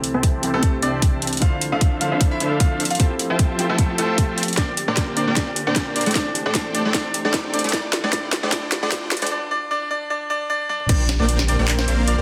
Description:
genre	future bass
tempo	152 BPM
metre	4/4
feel	swing 54% on 16ths, half-time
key	unclear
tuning	A4 = 442 Hz
part	felt-muted upright piano	accompaniment	0.0-4.6 s	C3 to C5	-30 LUFS	equal	sidechain pumping
part	airy breathy pad	sustained chords	0.0-12.2 s	C2 to E5	-36 LUFS	equal	none
part	trap drum kit	drums	0.0-12.2 s	crash cymbal, handclaps, hi-hat, snare drum, toms	-26 LUFS	equal	studio ambience
part	riser and impact	sound effects	2.9-12.2 s	none	-39 LUFS	equal	none
part	dense compressed supersaw	riff	0.1-12.2 s	A3 to A5	-27 LUFS	equal	vintage 12-bit sampler grit, sidechain pumping, low-pass filter
part	electronic kick drum	drums	0.2-11.0 s	none	-22 LUFS	equal	studio ambience
part	bright baby grand piano	melody	0.5-12.2 s	A3 to F5	-28 LUFS	equal	sidechain pumping, tape echo
part	thumb-piano-like synth pluck	arpeggios	4.6-12.2 s	D4 to G4	-37 LUFS	equal	none
part	saturated sub bass	bass	10.9-12.2 s	Bb1	-23 LUFS	equal	sidechain pumping
room	moderate digital room reverb, RT60 1.0 s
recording	dense, heavily limited modern master, high-pass filter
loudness	-21 LUFS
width	mono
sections	0.0-10.9 A section; 10.9-12.2 B section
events	build-up 0.0-10.9; filter sweep on supersaw synth 0.0-10.9; filter sweep 0.0-10.9; drum fill 4.6-9.3, 10.7; drop 10.9-12.2; impact 10.9-12.2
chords	0.0 Am7/C; 1.4 Dm7; 3.0 Fmaj9; 4.6 Bb69; 6.0 Am7/C; 7.7 Dm7; 9.3 N.C.; 10.9 Bb69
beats	0.23 0.63 1.02 | 1.42 1.81 2.21 2.60 | 3.00 3.39 3.79 4.18 | 4.58 4.97 5.37 5.76 | 6.16 6.55 6.94 7.34 | 7.73 8.13 8.52 8.92 | 9.31 9.71 10.10 10.50 | 10.89 11.29 11.68 12.08

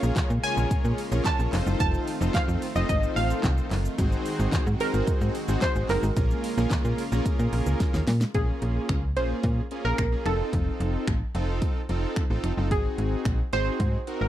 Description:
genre	dance-pop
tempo	110 BPM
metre	4/4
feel	straight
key	Bb minor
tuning	A4 = 440 Hz
part	glassy wavetable pluck	melody	0.0-14.3 s	Ab4 to A5	-30 LUFS	right 2 dB	chorus, slapback echo
part	big bright polysynth	accompaniment	0.0-14.3 s	Bb3 to Db5	-31 LUFS	equal	sidechain pumping
part	supersaw pad	sustained chords	0.0-8.3 s	Db3 to Gb4	-34 LUFS	right 1 dB	sidechain pumping
part	slap-like FM bass	bass	0.0-14.3 s	F1 to Bb2	-26 LUFS	equal	sidechain pumping
part	pop drum kit	drums	0.0-14.2 s	finger snaps, handclaps, hi-hat, kick drum, shaker, snare drum	-27 LUFS	equal	none
room	little or no reverb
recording	dry, close 1970s-style studio recording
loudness	-23 LUFS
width	side -12 dB against mid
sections	0.0-8.3 A section; 8.3-14.3 B section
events	drum fill 7.8-8.3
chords	0.0 Bbm7; 1.5 F7; 4.0 Ab7; 6.2 Bbm7; 10.3 F7; 12.7 Ab7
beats	0.17 0.71 1.26 | 1.80 2.35 2.89 3.44 | 3.98 4.53 5.08 5.62 | 6.17 6.71 7.26 7.80 | 8.35 8.89 9.44 9.98 | 10.53 11.07 11.62 12.17 | 12.71 13.26 13.80

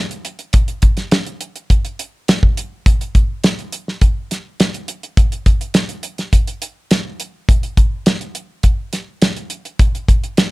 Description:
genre	blues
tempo	104 BPM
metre	4/4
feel	straight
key	none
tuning	none
part	damped 70s drum kit	drums	0.1-10.5 s	hi-hat, kick drum, snare drum	-14 LUFS	equal	none
room	little or no reverb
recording	none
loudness	-14 LUFS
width	side -21 dB against mid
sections	0.0-10.5 A section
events	none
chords	none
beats	| 0.55 1.13 1.71 2.29 | 2.86 3.44 4.02 4.60 | 5.18 5.76 6.33 6.91 | 7.49 8.07 8.65 9.22 | 9.80 10.38

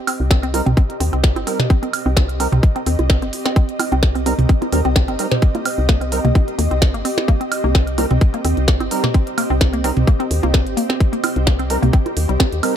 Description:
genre	minimal techno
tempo	129 BPM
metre	4/4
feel	swing 54% on 16ths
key	C minor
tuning	A4 = 437 Hz
part	ethereal airy pad	texture	0.0-12.8 s	C4 to Eb5	-24 LUFS	equal	ensemble chorus, built-in reverb, sidechain pumping
part	hollow square pluck	riff	0.1-12.7 s	G3 to C5	-24 LUFS	left 1 dB	chorus, phaser, sidechain pumping, tape echo
part	minimal click drum kit	drums	0.1-12.7 s	hi-hat, snare drum	-23 LUFS	equal	none
part	electronic woodblock, bongos and toms	percussion	0.1-12.7 s	none	-22 LUFS	right 4 dB	none
part	woody FM bass	bass	0.2-12.6 s	G1 to Eb2	-20 LUFS	equal	sidechain pumping
part	electronic kick drum	drums	0.3-12.5 s	none	-14 LUFS	equal	none
part	percussive organ stab	stabs	0.5-12.7 s	G3 to Bb4	-26 LUFS	right 3 dB	ensemble chorus, tape echo
room	little or no reverb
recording	none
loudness	-15 LUFS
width	side -9 dB against mid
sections	0.0-12.8 A section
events	none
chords	0.0 Cm7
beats	0.31 0.77 1.24 | 1.70 2.17 2.63 3.10 | 3.56 4.03 4.49 4.96 | 5.42 5.89 6.35 6.82 | 7.28 7.75 8.21 8.68 | 9.14 9.61 10.07 10.54 | 11.00 11.47 11.94 12.40

